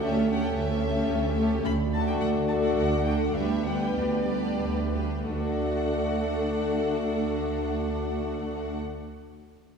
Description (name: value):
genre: quick classical-period movement for symphony orchestra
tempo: 86-112 BPM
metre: 3/4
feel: rubato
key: D major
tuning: A4 = 445 Hz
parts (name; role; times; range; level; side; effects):
- rich studio violin section; melody; 0.0-8.8 s; D5 to B5; -38 LUFS; left 3 dB; none
- rich symphonic violin section; second line; 0.0-8.8 s; F#4 to B4; -33 LUFS; left 4 dB; none
- rich chamber viola section; accompaniment; 0.0-8.8 s; G3 to D4; -33 LUFS; right 1 dB; none
- warm French horn section; sustained chords; 0.0-8.8 s; G3 to D4; -30 LUFS; left 2 dB; none
- clear chamber double bass section; bass; 0.0-8.8 s; D2; -31 LUFS; right 3 dB; none
- rich chamber cello section; bass; 0.0-8.8 s; D2; -33 LUFS; right 4 dB; none
room: wet scoring stage reverb, RT60 1.9 s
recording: heard from further back in the room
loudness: -24 LUFS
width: side -6 dB against mid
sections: 0.0-5.3 A section; 5.3-9.2 B section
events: slowing down 0.8-5.3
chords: 0.0 A7/D; 1.6 D; 3.4 G/D; 5.3 D